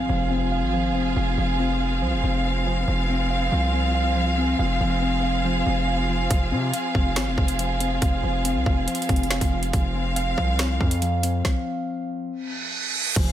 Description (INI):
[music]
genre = hip hop, drill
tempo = 140 BPM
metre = 4/4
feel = half-time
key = F minor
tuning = A4 = 440 Hz
[part]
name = warm symphonic string section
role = sustained chords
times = 0.0-13.3 s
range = F3 to F5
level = -27 LUFS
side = right 1 dB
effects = none
[part]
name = muted felt-like synth keys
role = arpeggios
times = 0.0-13.3 s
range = F3 to F5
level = -26 LUFS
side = left 2 dB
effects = chorus, low-pass filter, tape echo
[part]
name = impact and reverse cymbal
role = sound effects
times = 0.0-1.2, 12.4-13.3 s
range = none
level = -27 LUFS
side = right 5 dB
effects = none
[part]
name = distorted 808-style bass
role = bass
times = 0.1-13.3 s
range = F1 to C3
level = -25 LUFS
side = equal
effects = distortion
[part]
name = drill drum kit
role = drums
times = 6.3-13.3 s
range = crash cymbal, finger snaps, hi-hat, kick drum, snare drum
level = -23 LUFS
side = equal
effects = none
[sound]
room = light reverb, digital ambience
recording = none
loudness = -21 LUFS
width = side -11 dB against mid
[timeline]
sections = 0.0-13.2 A section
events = impact 0.0-1.2, 13.2; stop 11.4-13.2; reverse cymbal 12.4-13.2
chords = 0.0 Fm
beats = 0.30 0.73 | 1.16 1.59 2.02 2.45 | 2.88 3.31 3.73 4.16 | 4.59 5.02 5.45 5.88 | 6.30 6.73 7.16 7.59 | 8.02 8.45 8.88 9.30 | 9.73 10.16 10.59 11.02 | 11.45 11.88 12.30 12.73 | 13.16